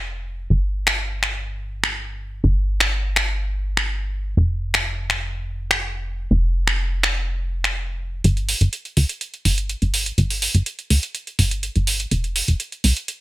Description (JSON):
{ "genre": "progressive house", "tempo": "124 BPM", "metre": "4/4", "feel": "straight", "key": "unclear", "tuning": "A4 = 440 Hz", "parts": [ { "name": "plucky analog bass", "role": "bass", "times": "0.0-12.9 s", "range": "F1 to D2", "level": "-21 LUFS", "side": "equal", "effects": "none" }, { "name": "pop drum kit", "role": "drums", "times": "0.9-13.2 s", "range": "finger snaps, hi-hat", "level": "-21 LUFS", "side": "equal", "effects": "high-pass filter on snare, studio reverb, high-pass filter on hats" } ], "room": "little or no reverb", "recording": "none", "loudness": "-19 LUFS", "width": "side -17 dB against mid", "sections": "0.0-8.2 A section; 8.2-13.2 B section", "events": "build-up 8.2-13.2", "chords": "none", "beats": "0.02 | 0.50 0.98 1.47 1.95 | 2.44 2.92 3.40 3.89 | 4.37 4.86 5.34 5.82 | 6.31 6.79 7.28 7.76 | 8.24 8.73 9.21 9.70 | 10.18 10.66 11.15 11.63 | 12.11 12.60 13.08" }